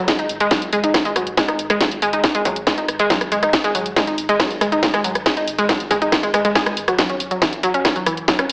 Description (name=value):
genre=driving peak-time techno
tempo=139 BPM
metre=4/4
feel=straight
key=unclear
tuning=A4 = 440 Hz
part: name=saturated sub bass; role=bass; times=0.0-8.5 s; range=F#1 to G#1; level=-44 LUFS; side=equal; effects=tube saturation, sidechain pumping, low-pass filter
part: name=analog pluck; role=riff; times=0.1-8.5 s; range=E3 to G#4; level=-19 LUFS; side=equal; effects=chorus, tube saturation, sidechain pumping, analog delay
part: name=electronic kick drum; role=drums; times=0.1-8.4 s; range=none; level=-21 LUFS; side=equal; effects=distortion, overdrive
part: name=techno drum kit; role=drums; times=0.1-8.5 s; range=hi-hat, rim click, snare drum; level=-20 LUFS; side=equal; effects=overdrive
room=wet plate reverb, RT60 1.0 s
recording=dreamy mix soaked in reverb, AM radio sound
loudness=-16 LUFS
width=side -30 dB against mid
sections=0.0-8.5 A section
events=none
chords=0.1 G#5; 7.0 F#5